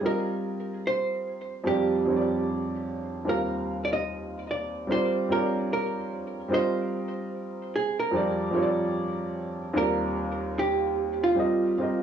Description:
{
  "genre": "hip hop",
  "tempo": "74 BPM",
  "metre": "4/4",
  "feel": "swing 59% on 16ths",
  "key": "unclear",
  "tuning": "A4 = 439 Hz",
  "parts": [
    { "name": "archtop guitar, miked and amplified", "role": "melody", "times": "0.0-12.0 s", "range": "F4 to Eb5", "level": "-28 LUFS", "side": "right 3 dB", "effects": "low-pass filter, cassette tape, tape echo" },
    { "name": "warm upright piano", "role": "accompaniment", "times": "0.0-12.0 s", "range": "Eb2 to F5", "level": "-28 LUFS", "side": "right 1 dB", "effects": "low-pass filter" }
  ],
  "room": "moderate booth ambience, RT60 0.3 s",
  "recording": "home recording on cassette, small room ambience",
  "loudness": "-25 LUFS",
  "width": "side -8 dB against mid",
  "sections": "0.0-12.0 A section",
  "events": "none",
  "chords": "0.0 F9sus4; 1.7 Bb69/F; 3.3 Ebadd9; 4.9 Csus2; 6.5 F9sus4; 8.1 Bb69/F; 9.8 Ebmaj9; 11.4 F9sus4",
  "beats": "| 0.03 0.84 1.65 2.46 | 3.27 4.08 4.89 5.71 | 6.52 7.33 8.14 8.95 | 9.76 10.57 11.38"
}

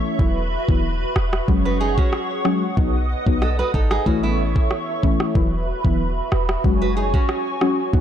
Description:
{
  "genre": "dancehall",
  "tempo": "93 BPM",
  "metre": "4/4",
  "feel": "straight",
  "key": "E major",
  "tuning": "A4 = 440 Hz",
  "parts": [
    { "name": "deep mellow chord stab", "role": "accompaniment", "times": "0.0-8.0 s", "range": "E3 to F#4", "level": "-23 LUFS", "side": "left 2 dB", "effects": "chorus, sidechain pumping" },
    { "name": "hollow soft pad", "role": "sustained chords", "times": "0.0-8.0 s", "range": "F#4 to D#6", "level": "-26 LUFS", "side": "right 1 dB", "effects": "ensemble chorus, sidechain pumping" },
    { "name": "clean 808-style bass", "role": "bass", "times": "0.2-8.0 s", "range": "E1 to B1", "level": "-22 LUFS", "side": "equal", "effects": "none" },
    { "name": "afro-pop drum kit", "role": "drums", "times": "0.2-8.0 s", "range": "kick drum, rim click", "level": "-21 LUFS", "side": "equal", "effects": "vintage 12-bit sampler grit" },
    { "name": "nylon-string guitar", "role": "arpeggios", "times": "1.7-7.9 s", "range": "B3 to D#5", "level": "-26 LUFS", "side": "right 5 dB", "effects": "ping-pong delay" }
  ],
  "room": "little or no reverb",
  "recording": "dark, warm production",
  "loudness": "-18 LUFS",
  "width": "side -10 dB against mid",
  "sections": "0.0-8.0 A section",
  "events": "none",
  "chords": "0.2 Esus2; 1.5 F#sus2; 2.8 B; 4.1 A; 5.4 Esus2; 6.6 F#sus2",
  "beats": "| 0.19 0.84 1.48 2.13 | 2.77 3.42 4.06 4.71 | 5.35 6.00 6.64 7.29 | 7.93"
}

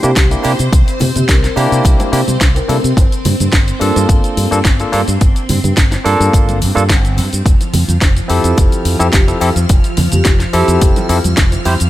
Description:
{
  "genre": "nu-disco, nu disco",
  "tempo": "107 BPM",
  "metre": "4/4",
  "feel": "straight",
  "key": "G dorian",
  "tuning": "A4 = 436 Hz",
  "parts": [
    { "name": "vibraphone with soft mallets", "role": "melody", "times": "0.0-2.8, 9.0-10.8 s", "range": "G4 to Bb4", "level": "-24 LUFS", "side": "left 3 dB", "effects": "analog delay" },
    { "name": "barky tine electric piano", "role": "accompaniment", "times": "0.0-11.7 s", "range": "Bb3 to C5", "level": "-17 LUFS", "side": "equal", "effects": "medium stereo tremolo, sidechain pumping, analog delay" },
    { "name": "string machine, full ensemble", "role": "sustained chords", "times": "0.0-11.9 s", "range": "F3 to F6", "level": "-22 LUFS", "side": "equal", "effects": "ensemble chorus, sidechain pumping" },
    { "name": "fingered electric bass with an envelope filter", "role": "bass", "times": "0.0-11.9 s", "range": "F1 to C3", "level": "-15 LUFS", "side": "equal", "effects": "none" },
    { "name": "house drum kit", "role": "drums", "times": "0.0-11.9 s", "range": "hi-hat, shaker, snare drum", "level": "-19 LUFS", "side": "left 1 dB", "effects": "overdrive, studio reverb" },
    { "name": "bongos, cabasa and congas", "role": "percussion", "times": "0.0-11.9 s", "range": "none", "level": "-23 LUFS", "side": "right 2 dB", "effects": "none" },
    { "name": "electronic kick drum", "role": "drums", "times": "0.2-11.5 s", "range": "none", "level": "-12 LUFS", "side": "equal", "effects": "overdrive, studio reverb" }
  ],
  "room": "little or no reverb",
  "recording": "none",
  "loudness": "-10 LUFS",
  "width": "side -14 dB against mid",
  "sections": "0.0-11.9 A section",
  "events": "none",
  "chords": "0.0 C7; 3.0 Gm7; 7.5 Fmaj7",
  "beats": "0.16 | 0.72 1.29 1.85 2.41 | 2.97 3.53 4.09 4.65 | 5.21 5.77 6.33 6.89 | 7.45 8.02 8.57 9.14 | 9.70 10.26 10.82 11.38"
}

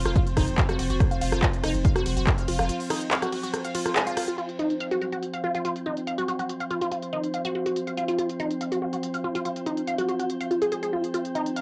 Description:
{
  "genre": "driving peak-time techno",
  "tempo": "142 BPM",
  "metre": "4/4",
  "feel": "straight",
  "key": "unclear",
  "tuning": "A4 = 440 Hz",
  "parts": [
    { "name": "saturated sub bass", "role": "bass", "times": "0.0-2.7 s", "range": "F1", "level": "-31 LUFS", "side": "equal", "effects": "overdrive, sidechain pumping, low-pass filter" },
    { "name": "metallic inharmonic drone", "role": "drone", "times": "0.0-11.6 s", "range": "F3 to C4", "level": "-35 LUFS", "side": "equal", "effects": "chorus, built-in reverb, sidechain pumping" },
    { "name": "resonant blip pluck", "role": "riff", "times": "0.1-11.6 s", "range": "Eb4 to F5", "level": "-30 LUFS", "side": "equal", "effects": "phaser, tube saturation, sidechain pumping, analog delay" },
    { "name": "techno drum kit", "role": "drums", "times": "0.1-11.6 s", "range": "handclaps, hi-hat, ride cymbal, rim click", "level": "-33 LUFS", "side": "equal", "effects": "low-pass filter on hats, cassette tape, low-pass filter on snare, low-pass filter on cymbals, low-pass filter on room" },
    { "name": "electronic kick drum", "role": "drums", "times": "0.2-2.4 s", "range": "none", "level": "-26 LUFS", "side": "equal", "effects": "cassette tape" }
  ],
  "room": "wet booth ambience, RT60 0.2 s",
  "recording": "home recording on cassette",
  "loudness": "-27 LUFS",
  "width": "mono",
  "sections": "0.0-4.4 A section; 4.4-11.6 B section",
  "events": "drop 0.0-4.4; break 2.7-4.4; band accent 4.0",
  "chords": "0.0 F5",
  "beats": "0.16 0.58 | 1.00 1.42 1.85 2.27 | 2.69 3.11 3.54 3.96 | 4.38 4.80 5.23 5.65 | 6.07 6.50 6.92 7.34 | 7.76 8.19 8.61 9.03 | 9.45 9.88 10.30 10.72 | 11.14 11.56"
}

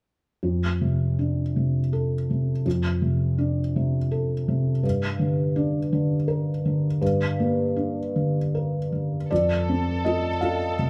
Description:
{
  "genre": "neoclassical piano and strings",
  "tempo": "54 BPM (dotted quarters)",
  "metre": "6/8",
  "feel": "rubato",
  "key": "unclear",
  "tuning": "A4 = 444 Hz",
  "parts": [
    { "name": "felt-muted upright piano", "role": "accompaniment", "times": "0.4-10.9 s", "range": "F2 to F5", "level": "-24 LUFS", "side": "equal", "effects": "none" },
    { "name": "rich chamber violin section", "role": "melody", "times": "9.3-10.9 s", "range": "A4", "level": "-33 LUFS", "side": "equal", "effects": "none" }
  ],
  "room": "moderate large studio reverb, RT60 1.1 s",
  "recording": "band playing live in one room",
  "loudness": "-24 LUFS",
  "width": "mono",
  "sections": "0.4-9.3 A section; 9.3-10.9 B section",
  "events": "none",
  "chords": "0.4 F6; 4.8 Gm; 9.3 F6",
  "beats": "| 0.43 1.56 | 2.65 3.75 | 4.84 5.92 | 7.01 8.14 | 9.30 10.42"
}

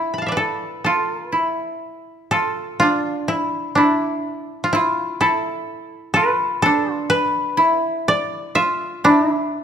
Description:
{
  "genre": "japanese traditional",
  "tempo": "62 BPM",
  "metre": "4/4",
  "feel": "rubato",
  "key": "E in sen",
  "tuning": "A4 = 440 Hz",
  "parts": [
    { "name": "koto", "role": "melody", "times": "0.0-9.6 s", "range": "D4 to B5", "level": "-19 LUFS", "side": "equal", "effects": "none" },
    { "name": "koto", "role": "second line", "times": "0.0-9.6 s", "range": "D4 to F4", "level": "-21 LUFS", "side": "right 1 dB", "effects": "none" }
  ],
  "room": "light reverb",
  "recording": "minimal, uncompressed stereo recording",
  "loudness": "-17 LUFS",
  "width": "side -8 dB against mid",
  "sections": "0.0-9.6 A section",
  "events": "none",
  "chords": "none",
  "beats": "0.84 1.83 | 2.80 3.76 4.71 5.67 | 6.63 7.58 8.56 9.55"
}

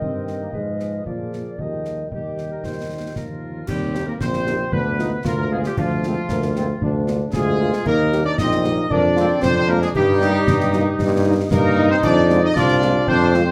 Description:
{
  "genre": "military-style march for wind band",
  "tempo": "115 BPM",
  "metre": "2/4",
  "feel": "straight",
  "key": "Eb major",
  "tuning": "A4 = 438 Hz",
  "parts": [
    { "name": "dark trumpet section", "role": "melody", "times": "0.0-13.5 s", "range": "F4 to G5", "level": "-29 LUFS", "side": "equal", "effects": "none" },
    { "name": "mellow euphonium", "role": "second line", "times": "0.0-13.5 s", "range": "Eb3 to Eb4", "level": "-28 LUFS", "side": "equal", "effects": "none" },
    { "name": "warm woodwind section", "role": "second line", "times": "0.0-13.5 s", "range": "F4 to Eb5", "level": "-30 LUFS", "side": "equal", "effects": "none" },
    { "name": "mellow French horn section", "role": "accompaniment", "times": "0.0-13.4 s", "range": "G3 to Eb5", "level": "-30 LUFS", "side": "equal", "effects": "none" },
    { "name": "mellow trombone section", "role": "sustained chords", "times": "0.0-13.5 s", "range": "Eb3 to F4", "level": "-28 LUFS", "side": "equal", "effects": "none" },
    { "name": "warm tuba", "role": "bass", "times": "0.0-13.5 s", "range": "Bb1 to Bb2", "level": "-24 LUFS", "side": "equal", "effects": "none" },
    { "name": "concert bass drum, concert snare drum and clash cymbals", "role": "drums", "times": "0.0-13.5 s", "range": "none", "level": "-29 LUFS", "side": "equal", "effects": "none" }
  ],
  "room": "wet large studio reverb, RT60 0.9 s",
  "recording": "none",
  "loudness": "-20 LUFS",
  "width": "mono",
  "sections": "0.0-3.7 A section; 3.7-13.5 A section",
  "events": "none",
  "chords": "0.0 Eb/G; 0.5 Fm7b5/Ab; 1.1 Bb7; 1.6 Eb; 4.7 Ddim7; 5.8 Bb7/D; 7.9 Eb; 8.9 Bb7/F; 10.0 Eb/G; 12.0 Fm",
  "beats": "0.01 | 0.54 1.06 | 1.59 2.11 | 2.63 3.16 | 3.68 4.21 | 4.73 5.25 | 5.77 6.30 | 6.82 7.34 | 7.86 8.38 | 8.91 9.43 | 9.95 10.47 | 11.00 11.52 | 12.04 12.56 | 13.08"
}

